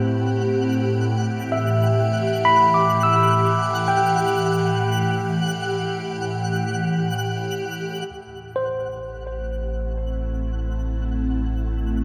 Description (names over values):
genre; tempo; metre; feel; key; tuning
ambient; free time; none; none; A dorian; A4 = 440 Hz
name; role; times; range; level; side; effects
evolving wavetable pad; sustained chords; 0.0-12.0 s; A2 to G4; -25 LUFS; equal; ensemble chorus, built-in reverb, phaser
bright tine electric piano; arpeggios; 0.0-12.0 s; C5 to E6; -25 LUFS; equal; dub echo
organ-like drone; drone; 0.0-12.0 s; A3 to E4; -39 LUFS; equal; ensemble chorus, built-in reverb
twinkling granular texture; texture; 0.0-12.0 s; F#5 to F#6; -34 LUFS; equal; built-in reverb
deep rumbling drone; bass; 9.1-12.0 s; A1; -28 LUFS; equal; built-in reverb
room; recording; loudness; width
wet plate reverb, RT60 2.7 s; echo-heavy mix; -22 LUFS; mono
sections
0.0-8.1 A section; 8.1-12.0 B section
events
fade-in on synth texture 0.0-8.1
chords
0.0 Am7; 0.6 Emadd9/A; 8.1 Am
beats
free time